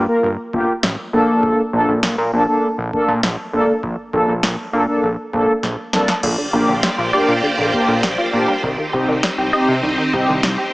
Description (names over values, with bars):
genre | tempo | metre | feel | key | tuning
synth-pop | 100 BPM | 4/4 | straight | unclear | A4 = 438 Hz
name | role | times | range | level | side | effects
mellow synth brass | accompaniment | 0.0-10.3 s | Bb3 to Bb4 | -18 LUFS | equal | chorus
fat analog bass | bass | 0.0-10.6 s | G1 to C3 | -21 LUFS | equal | none
electro analog drum machine | drums | 0.5-10.6 s | crash cymbal, kick drum, snare drum | -22 LUFS | equal | none
phased string machine | sustained chords | 6.2-10.7 s | Bb3 to D5 | -20 LUFS | equal | ensemble chorus, phaser
resonant blip pluck | arpeggios | 6.2-10.7 s | D3 to Eb5 | -22 LUFS | equal | phaser, digital delay
room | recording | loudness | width
moderate plate reverb, RT60 2.7 s | small speaker sound | -15 LUFS | side -21 dB against mid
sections
0.0-6.2 A section; 6.2-10.7 B section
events
drum fill 5.6-6.2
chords
0.0 Gm7; 1.1 Bbmaj7; 6.2 Bb6; 8.6 Cm